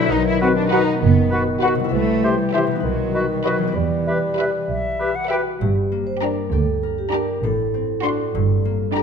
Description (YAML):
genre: cinematic, playful, whimsical film cue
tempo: 66 BPM (dotted quarters)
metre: 6/8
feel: straight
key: E minor, G minor from 5.6 s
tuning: A4 = 441 Hz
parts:
  - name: dark studio violin section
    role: melody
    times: 0.0-9.0 s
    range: D#5 to C6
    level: -28 LUFS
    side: left 4 dB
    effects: none
  - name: clear studio violin section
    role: second line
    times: 0.0-9.0 s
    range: F#4 to B4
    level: -32 LUFS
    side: left 2 dB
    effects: none
  - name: dark studio viola section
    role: accompaniment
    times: 0.0-9.0 s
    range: D4 to G4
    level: -28 LUFS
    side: right 1 dB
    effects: none
  - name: mellow bassoon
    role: accompaniment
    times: 0.0-5.1 s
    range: D3 to G3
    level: -25 LUFS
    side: right 1 dB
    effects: none
  - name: concert harp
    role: arpeggios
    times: 0.0-9.0 s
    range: G2 to E5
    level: -25 LUFS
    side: left 10 dB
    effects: none
  - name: warm studio cello section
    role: bass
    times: 0.0-9.0 s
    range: D2 to E4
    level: -24 LUFS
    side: right 1 dB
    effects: none
  - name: dark studio double bass section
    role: bass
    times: 0.1-9.0 s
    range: F#1 to E2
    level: -22 LUFS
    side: right 4 dB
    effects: none
  - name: bright concert flute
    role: second line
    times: 0.4-5.4 s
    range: D#5 to G5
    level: -29 LUFS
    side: left 3 dB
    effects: none
  - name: warm clarinet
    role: second line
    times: 0.4-5.4 s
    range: F#4 to G4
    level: -30 LUFS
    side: left 2 dB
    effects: none
  - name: warm oboe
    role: second line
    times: 0.4-5.4 s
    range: B4 to C5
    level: -28 LUFS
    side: right 1 dB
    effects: none
  - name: mellow French horn section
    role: sustained chords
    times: 0.4-5.4 s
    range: F#4 to C5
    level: -29 LUFS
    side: left 5 dB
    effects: none
  - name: vibraphone with soft mallets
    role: melody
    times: 5.3-9.0 s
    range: F#4 to C5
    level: -24 LUFS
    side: right 5 dB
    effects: none
room: moderate scoring stage reverb, RT60 1.6 s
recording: none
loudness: -17 LUFS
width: side -6 dB against mid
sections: 0.0-5.6 A section; 5.6-9.0 B section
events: none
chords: 0.1 B; 1.9 C; 2.8 B; 3.8 Em; 5.6 Gm; 7.4 D7/A; 8.3 Gm